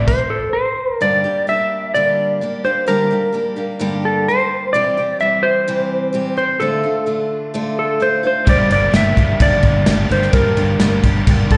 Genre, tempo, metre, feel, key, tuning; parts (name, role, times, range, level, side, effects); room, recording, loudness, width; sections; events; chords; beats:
folk rock and heartland rock; 129 BPM; 4/4; straight; A4 = 439 Hz
clean lap steel guitar; melody; 0.0-11.6 s; A4 to E5; -19 LUFS; equal; slapback echo
picked steel-string acoustic guitar; accompaniment; 0.0-11.6 s; G2 to G4; -24 LUFS; equal
raw garage guitar; riff; 0.0-0.1, 8.5-11.6 s; G2 to G4; -25 LUFS; equal; overdrive, slapback echo
hollow-body short-scale fingered electric bass; bass; 0.0, 8.5-11.6 s; G1; -20 LUFS; equal
natural country drum kit; drums; 0.1-0.2, 8.5-11.6 s; crash cymbal, kick drum, snare drum; -18 LUFS; equal
light reverb; live gig heard through the venue's PA, recital hall reverb, nothing above 10.4 kHz; -17 LUFS; mono
0.0-1.0 A section; 1.0-11.6 B section
stop 0.1-1.0
0.0 Am; 1.0 Gm; 4.7 C; 6.6 Dm; 8.5 Gm
0.08 0.55 | 1.01 1.48 1.95 2.41 | 2.88 3.34 3.81 4.28 | 4.74 5.21 5.67 6.14 | 6.60 7.07 7.54 8.00 | 8.47 8.94 9.40 9.87 | 10.34 10.80 11.27